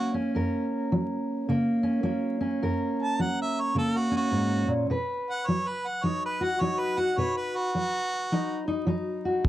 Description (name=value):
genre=acoustic country blues, solo or duo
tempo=106 BPM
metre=4/4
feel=swing 62% on 8ths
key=unclear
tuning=A4 = 437 Hz
part: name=bright harmonica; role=melody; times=0.0-8.7 s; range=F#4 to A5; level=-29 LUFS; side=right 2 dB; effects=cassette tape
part: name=fingerpicked steel-string acoustic guitar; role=accompaniment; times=0.0-9.5 s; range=F#2 to B4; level=-26 LUFS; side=equal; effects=cassette tape
part: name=kick drum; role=drums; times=9.4-9.5 s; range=none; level=-19 LUFS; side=equal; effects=cassette tape
room=moderate booth ambience, RT60 0.2 s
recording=home recording on cassette, vinyl crackle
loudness=-25 LUFS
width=side -14 dB against mid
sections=0.0-9.5 A section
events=harmonica solo 0.0-9.5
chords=0.0 F#; 4.9 B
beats=| 0.35 0.92 1.49 2.06 | 2.63 3.19 3.76 4.33 | 4.90 5.47 6.04 6.61 | 7.18 7.75 8.31 8.88 | 9.45